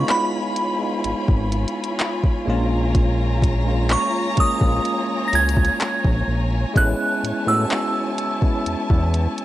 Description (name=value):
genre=contemporary R&B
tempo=63 BPM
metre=4/4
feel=straight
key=unclear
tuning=A4 = 440 Hz
part: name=glassy synth bell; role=melody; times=0.0-9.4 s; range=B5 to A#6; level=-23 LUFS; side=right 2 dB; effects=chorus, tape echo
part: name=bell-like tine electric piano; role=accompaniment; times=0.0-9.4 s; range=G#3 to G#4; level=-26 LUFS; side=equal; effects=fast stereo tremolo
part: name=dark studio string section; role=sustained chords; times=0.0-9.4 s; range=E4 to B5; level=-27 LUFS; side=left 1 dB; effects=none
part: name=fat analog bass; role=bass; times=0.0-9.3 s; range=G#1 to A2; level=-21 LUFS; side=equal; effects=none
part: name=smooth R&B drum kit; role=drums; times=0.1-9.4 s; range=handclaps, hi-hat, kick drum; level=-20 LUFS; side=equal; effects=vintage 12-bit sampler grit
room=digital ambience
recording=dry, gritty hardware recording, cassette tape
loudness=-18 LUFS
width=side -14 dB against mid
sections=0.0-9.4 A section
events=none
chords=0.0 C#7; 2.5 A#m7; 6.8 Amaj7